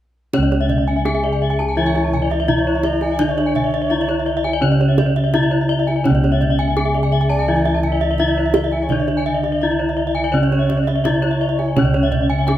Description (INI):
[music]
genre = Balinese gamelan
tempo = 84 BPM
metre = 4/4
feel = straight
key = unclear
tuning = A4 = 440 Hz
[part]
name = gamelan-type bronze metallophone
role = melody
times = 0.3-12.6 s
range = C#4 to G#4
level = -21 LUFS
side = left 2 dB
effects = none
[part]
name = gamelan-type bronze metallophone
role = accompaniment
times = 0.3-12.6 s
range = C#3 to E3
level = -22 LUFS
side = right 2 dB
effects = none
[part]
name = gamelan-type bronze metallophone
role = arpeggios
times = 0.3-12.6 s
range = C#5 to A5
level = -24 LUFS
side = left 5 dB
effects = none
[part]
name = gamelan-type bossed gongs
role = bass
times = 0.3-12.6 s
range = C#2 to D4+35c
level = -21 LUFS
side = equal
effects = none
[part]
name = kendang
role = percussion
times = 0.3-12.6 s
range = none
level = -24 LUFS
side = right 3 dB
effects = none
[part]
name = gamelan-type bronze metallophone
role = arpeggios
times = 0.4-12.4 s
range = C#5 to G#5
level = -25 LUFS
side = right 3 dB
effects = none
[part]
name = breathy xiao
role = second line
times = 1.8-12.6 s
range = C#5 to E5+31c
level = -27 LUFS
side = right 4 dB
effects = none
[sound]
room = moderate recital hall reverb, RT60 1.7 s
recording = close, detailed microphones, faint mains hum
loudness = -15 LUFS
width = side -12 dB against mid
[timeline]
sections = 0.3-12.6 A section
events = none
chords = none